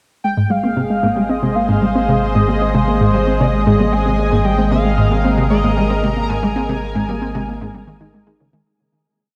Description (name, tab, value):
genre	ambient, sequencer-driven space music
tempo	114 BPM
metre	4/4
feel	straight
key	Ab major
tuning	A4 = 440 Hz
part	pulse-width lead	melody	0.2-8.1 s	C5 to Bb5	-25 LUFS	equal	chorus, tape echo
part	lush unison pad	sustained chords	0.6-8.7 s	Ab3 to Eb5	-24 LUFS	equal	chorus
part	warbly dusty pluck	arpeggios	0.2-8.6 s	Eb3 to Eb4	-23 LUFS	equal	chorus, tape echo
part	round analog bass	bass	0.2-8.6 s	Ab1	-23 LUFS	equal	none
part	analog pluck	riff	0.4-8.6 s	Ab2 to C4	-22 LUFS	equal	chorus, tape echo
room	wet huge ambient reverb, RT60 8.3 s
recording	dreamy mix soaked in reverb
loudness	-16 LUFS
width	mono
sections	0.2-8.7 A section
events	fade-out 5.9-8.7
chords	0.2 Ab